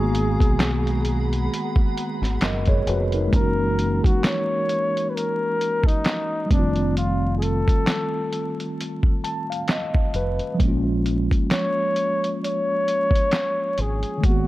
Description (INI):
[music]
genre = lo-fi hip hop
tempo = 66 BPM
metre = 4/4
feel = swing 57% on 16ths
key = unclear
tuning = A4 = 443 Hz
[part]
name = breathy flugelhorn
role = melody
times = 0.0-14.5 s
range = D4 to C#5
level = -25 LUFS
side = left 1 dB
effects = low-pass filter, tape echo
[part]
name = mellow tine electric piano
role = accompaniment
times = 0.0-14.5 s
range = D#3 to A5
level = -25 LUFS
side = right 1 dB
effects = medium stereo tremolo, low-pass filter
[part]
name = granular cloud pad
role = sustained chords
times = 0.0-3.3 s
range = G#4 to B5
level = -35 LUFS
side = right 2 dB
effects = built-in reverb, low-pass filter
[part]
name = deep dub fingered electric bass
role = bass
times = 0.0-14.5 s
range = E#1 to B1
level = -24 LUFS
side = equal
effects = none
[part]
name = lo-fi sampler-style drum kit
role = drums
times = 0.1-14.5 s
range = handclaps, hi-hat, kick drum, snare drum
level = -21 LUFS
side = equal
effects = none
[sound]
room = light reverb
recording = vinyl crackle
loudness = -20 LUFS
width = side -16 dB against mid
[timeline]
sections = 0.0-3.3 A section; 3.3-14.5 B section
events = none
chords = 0.0 G#m9; 3.3 F#7; 6.5 F7; 10.6 A#m7